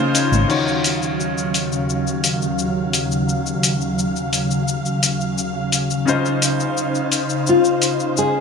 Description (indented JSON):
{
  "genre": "sunset chillout",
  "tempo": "86 BPM",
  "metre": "4/4",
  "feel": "straight",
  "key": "Eb dorian",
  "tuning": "A4 = 440 Hz",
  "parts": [
    { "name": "nylon-string guitar", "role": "melody", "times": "0.0-0.1, 6.1-8.4 s", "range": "Eb4 to Ab4", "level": "-20 LUFS", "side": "left 4 dB", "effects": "none" },
    { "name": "clear grand piano", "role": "accompaniment", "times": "0.0-8.4 s", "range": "Db3 to Db5", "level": "-23 LUFS", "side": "moving between left 4 dB and right 3 dB", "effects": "auto-pan, low-pass filter, digital delay" },
    { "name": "soft string machine", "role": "sustained chords", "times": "0.0-8.4 s", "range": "Eb2 to F5", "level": "-21 LUFS", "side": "equal", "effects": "ensemble chorus" },
    { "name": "dusty soul sampler-style drum kit", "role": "drums", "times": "0.1-8.3 s", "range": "cabasa, crash cymbal, hi-hat", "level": "-22 LUFS", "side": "left 4 dB", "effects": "none" },
    { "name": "congas", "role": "percussion", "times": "0.3-0.5 s", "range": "none", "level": "-28 LUFS", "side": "left 4 dB", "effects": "none" }
  ],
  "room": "wet plate reverb, RT60 2.2 s",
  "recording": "bright 1980s-style digital production",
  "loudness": "-17 LUFS",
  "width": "side -5 dB against mid",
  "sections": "0.5-8.4 A section",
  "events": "filter sweep on string machine 0.5-8.4",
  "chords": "0.0 Dbmaj9; 0.5 Ebm9; 6.1 Dbmaj9",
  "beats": "| 0.50 1.20 1.90 2.60 | 3.29 3.99 4.69 5.39 | 6.08 6.78 7.48 8.18"
}